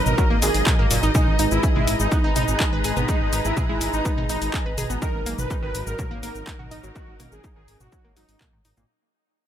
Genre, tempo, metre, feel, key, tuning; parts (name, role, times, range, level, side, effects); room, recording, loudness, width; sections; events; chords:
melodic techno; 124 BPM; 4/4; straight; A4 = 440 Hz
sweeping resonant pad; sustained chords; 0.0-8.9 s; F#3 to B4; -31 LUFS; right 1 dB; chorus, sidechain pumping
rich studio string section; texture; 0.0-8.9 s; D#4 to A#5; -31 LUFS; left 2 dB; sidechain pumping
soft supersaw; melody; 0.1-8.4 s; D#4 to B4; -28 LUFS; right 2 dB; sidechain pumping, digital delay
swelling detuned saw bass; bass; 0.1-8.8 s; F#1 to G#2; -27 LUFS; equal; sidechain pumping
techno drum kit; drums; 0.1-8.9 s; handclaps, hi-hat, shaker, toms; -27 LUFS; equal; overdrive
analog pluck; arpeggios; 0.2-8.8 s; A#2 to B5; -30 LUFS; equal; chorus, cassette tape, sidechain pumping, dub echo
electronic kick drum; drums; 0.2-8.5 s; -23 LUFS; equal; overdrive
digital ambience; -19 LUFS; side -10 dB against mid
0.0-8.9 A section
drop 0.0-8.9; fade-out 1.1-8.9
0.0 D#m/G#; 1.1 G#m; 5.0 D#m/G#